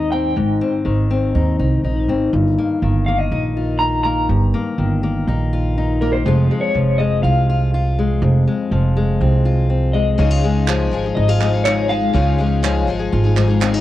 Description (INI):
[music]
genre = indie folk with a building arrangement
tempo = 122 BPM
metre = 4/4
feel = straight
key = unclear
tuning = A4 = 441 Hz
[part]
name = electric guitar through a small old amp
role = melody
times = 0.0-12.8 s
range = Bb4 to Bb5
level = -22 LUFS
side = left 2 dB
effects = tremolo
[part]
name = fingerpicked steel-string acoustic guitar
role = accompaniment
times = 0.0-13.8 s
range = F2 to F4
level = -20 LUFS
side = left 4 dB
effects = cassette tape
[part]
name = upright bass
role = bass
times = 0.0-13.8 s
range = F1 to Eb2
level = -17 LUFS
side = right 1 dB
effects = none
[part]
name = picked twelve-string acoustic guitar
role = accompaniment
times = 10.2-13.8 s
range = Db3 to Ab4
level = -24 LUFS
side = left 5 dB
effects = cassette tape
[part]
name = group handclap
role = percussion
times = 10.7-13.7 s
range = none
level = -24 LUFS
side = right 9 dB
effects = none
[sound]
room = light reverb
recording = home recording on cassette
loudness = -15 LUFS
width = side -14 dB against mid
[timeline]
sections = 0.0-10.2 A section; 10.2-13.8 B section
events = none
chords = 0.0 Ab; 2.3 Ebadd9/G; 6.3 Fm; 10.2 Dbadd9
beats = | 0.36 0.85 1.34 1.83 | 2.33 2.82 3.31 3.80 | 4.29 4.78 5.27 5.76 | 6.26 6.75 7.24 7.73 | 8.22 8.71 9.20 9.70 | 10.19 10.68 11.17 11.66 | 12.15 12.64 13.13 13.62